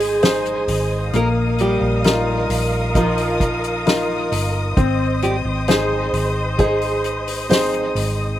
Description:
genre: pop ballad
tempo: 66 BPM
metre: 4/4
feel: straight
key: Ab major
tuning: A4 = 439 Hz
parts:
  - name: nylon-string guitar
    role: melody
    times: 0.0-8.4 s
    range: F3 to C5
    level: -23 LUFS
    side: right 1 dB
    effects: slapback echo
  - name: clear baby grand piano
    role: accompaniment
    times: 0.0-8.4 s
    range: Ab3 to C5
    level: -22 LUFS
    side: left 1 dB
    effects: slapback echo
  - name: warm studio string section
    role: sustained chords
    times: 0.0-8.4 s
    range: Bb4 to Eb6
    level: -25 LUFS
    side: equal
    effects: none
  - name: hollow-body short-scale fingered electric bass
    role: bass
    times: 0.0-8.4 s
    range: G1 to Bb1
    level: -23 LUFS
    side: equal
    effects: none
  - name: soft-mallet drum kit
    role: drums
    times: 0.0-8.2 s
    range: hi-hat, kick drum, snare drum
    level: -22 LUFS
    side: left 1 dB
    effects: none
room: little or no reverb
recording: recorded outdoors, with no room sound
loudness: -16 LUFS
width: side -12 dB against mid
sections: 0.0-8.4 A section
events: none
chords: 0.0 Ab; 1.1 Ebsus2/Bb; 4.8 Ab

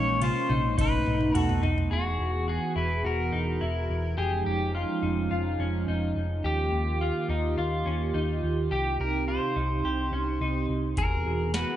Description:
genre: dream pop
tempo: 106 BPM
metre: 4/4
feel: straight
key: unclear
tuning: A4 = 440 Hz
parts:
  - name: pedal steel guitar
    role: melody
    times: 0.0-11.8 s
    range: Eb4 to Db5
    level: -32 LUFS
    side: equal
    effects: dub echo
  - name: hollow soft pad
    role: sustained chords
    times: 0.0-11.8 s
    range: C3 to G#4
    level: -31 LUFS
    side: right 2 dB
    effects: chorus
  - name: clean electric guitar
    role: arpeggios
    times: 0.0-11.8 s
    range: Db4 to G#4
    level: -33 LUFS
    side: left 4 dB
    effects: lush chorus, dub echo
  - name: hollow-body short-scale picked electric bass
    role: bass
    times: 0.0-11.6 s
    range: E1 to Eb2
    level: -30 LUFS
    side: equal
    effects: none
  - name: booming analog drum machine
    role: drums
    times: 0.2-1.9, 11.0-11.7 s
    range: hi-hat, kick drum, ride cymbal, snare drum, toms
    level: -29 LUFS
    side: equal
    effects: none
room: moderate spring reverb, RT60 1.2 s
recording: echo-heavy mix, nothing above 10.7 kHz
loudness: -25 LUFS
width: side -12 dB against mid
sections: 0.0-1.9 A section; 1.9-11.8 B section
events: drum fill 0.0-1.9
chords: 0.0 Bbm7; 0.8 Cb7; 1.9 Eadd9; 4.2 Dbadd9/F; 6.4 Ebadd9; 8.7 Cm; 11.0 Eadd9

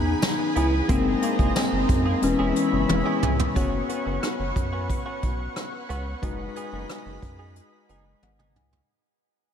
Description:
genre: 1980s-style pop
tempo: 90 BPM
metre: 4/4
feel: straight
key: F# mixolydian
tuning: A4 = 435 Hz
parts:
  - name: soft struck synth lead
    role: melody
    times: 0.0-3.2 s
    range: A#3 to E4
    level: -26 LUFS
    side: left 2 dB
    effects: chorus, tremolo, tape echo, shimmer reverb
  - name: mellow tine electric piano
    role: accompaniment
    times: 0.0-8.9 s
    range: E3 to G#5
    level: -29 LUFS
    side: left 5 dB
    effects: shimmer reverb
  - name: lush unison pad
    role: sustained chords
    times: 0.0-8.9 s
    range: G#4 to C#6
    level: -32 LUFS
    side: right 1 dB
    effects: chorus, shimmer reverb
  - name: rubbery square bass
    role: bass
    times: 0.0-8.8 s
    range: E1 to F#2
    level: -28 LUFS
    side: right 1 dB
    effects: none
  - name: direct-recorded clean electric guitar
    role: riff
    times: 0.1-8.8 s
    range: A#3 to G#4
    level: -34 LUFS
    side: right 4 dB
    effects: analog chorus, tape echo, shimmer reverb
  - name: soft brush drum kit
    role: drums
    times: 0.2-8.9 s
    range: hi-hat, kick drum, rim click, snare drum, tambourine, toms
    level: -27 LUFS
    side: equal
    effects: none
room: moderate huge ambient reverb, RT60 9.7 s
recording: dreamy mix soaked in reverb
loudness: -22 LUFS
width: side -8 dB against mid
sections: 0.0-3.6 A section; 3.6-8.9 B section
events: drum fill 2.9-3.6, 8.2-8.9; fade-out 3.6-8.9; tine electric piano fill 7.6-8.9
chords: 0.0 E; 0.9 G#add9/F#; 2.2 E6; 3.6 F#sus4; 6.2 B6/F#

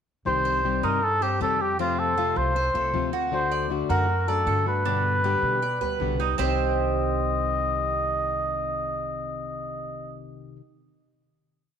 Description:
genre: latin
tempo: 157 BPM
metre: 4/4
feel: straight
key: C dorian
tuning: A4 = 440 Hz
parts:
  - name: trumpet with cup mute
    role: melody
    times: 0.3-10.2 s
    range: F4 to Eb5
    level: -25 LUFS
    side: equal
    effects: none
  - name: flamenco guitar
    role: accompaniment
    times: 0.3-10.6 s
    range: B2 to G4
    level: -31 LUFS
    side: left 10 dB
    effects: none
  - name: upright bass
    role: bass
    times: 0.3-10.6 s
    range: C2 to B2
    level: -30 LUFS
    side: right 1 dB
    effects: none
  - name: Cuban tres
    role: arpeggios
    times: 0.5-10.6 s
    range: C4 to D5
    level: -30 LUFS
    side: right 9 dB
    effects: none
room: moderate echo chamber reverb, RT60 1.9 s, small room ambience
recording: 1960s-style stereo with parts hard left and right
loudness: -22 LUFS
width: side -8 dB against mid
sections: 0.3-6.4 verse; 6.4-9.5 final chord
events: none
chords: 0.3 Cm; 1.8 F; 3.3 D; 4.9 G; 6.4 Cm

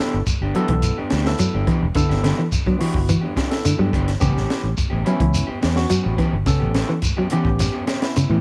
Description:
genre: afrobeat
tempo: 107 BPM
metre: 4/4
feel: straight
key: A mixolydian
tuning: A4 = 440 Hz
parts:
  - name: barky tine electric piano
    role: accompaniment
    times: 0.0-8.4 s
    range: B3 to A4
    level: -30 LUFS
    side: equal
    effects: overdrive, cassette tape
  - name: electric guitar at the edge of break-up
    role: stabs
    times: 0.0-8.4 s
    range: E3 to G4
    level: -30 LUFS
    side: equal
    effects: cassette tape
  - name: fingered electric bass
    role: bass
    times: 0.1-8.4 s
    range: E1 to A2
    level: -24 LUFS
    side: equal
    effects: none
  - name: compact cocktail drum kit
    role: drums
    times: 0.3-8.3 s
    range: hi-hat, kick drum, snare drum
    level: -26 LUFS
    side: equal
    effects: cassette tape
  - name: shekere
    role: percussion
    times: 0.3-8.3 s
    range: none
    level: -29 LUFS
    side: equal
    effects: none
  - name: semi-hollow electric guitar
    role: arpeggios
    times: 0.6-8.4 s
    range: C#3 to F#3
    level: -24 LUFS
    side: equal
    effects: ensemble chorus, cassette tape
room: light reverb, small room reverb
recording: home recording on cassette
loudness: -20 LUFS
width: mono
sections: 0.0-8.4 A section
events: none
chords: 0.0 G6; 4.2 A9

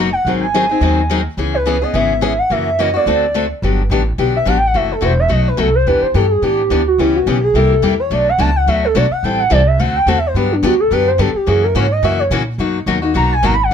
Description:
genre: acoustic string swing (jazz manouche)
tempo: 214 BPM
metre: 4/4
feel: swing 56% on 8ths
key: G major from 3.6 s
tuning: A4 = 440 Hz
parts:
  - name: picked steel-string acoustic guitar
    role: accompaniment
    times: 0.0-13.7 s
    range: B2 to A4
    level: -18 LUFS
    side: left 5 dB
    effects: none
  - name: upright bass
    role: bass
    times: 0.0-13.7 s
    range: E1 to A#2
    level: -18 LUFS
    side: right 1 dB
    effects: none
  - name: pure sine lead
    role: melody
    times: 0.1-13.7 s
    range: D4 to B5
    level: -15 LUFS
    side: right 1 dB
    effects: chorus
room: light reverb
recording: none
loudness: -12 LUFS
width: side -8 dB against mid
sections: 0.0-3.6 A section; 3.6-12.6 B section; 12.6-13.7 B section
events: soft synth lead solo 3.6-13.7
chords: 0.3 G#7; 1.4 C#m7; 2.5 F#7; 3.1 D7; 3.6 Gmaj9; 4.7 F#m7b5; 5.3 B7b9; 5.9 Em7; 7.0 C#m7b5; 7.5 C7; 8.1 Bm7; 9.2 Am7; 9.8 D9; 10.4 Gmaj7; 11.5 F#7; 12.6 Bmaj7

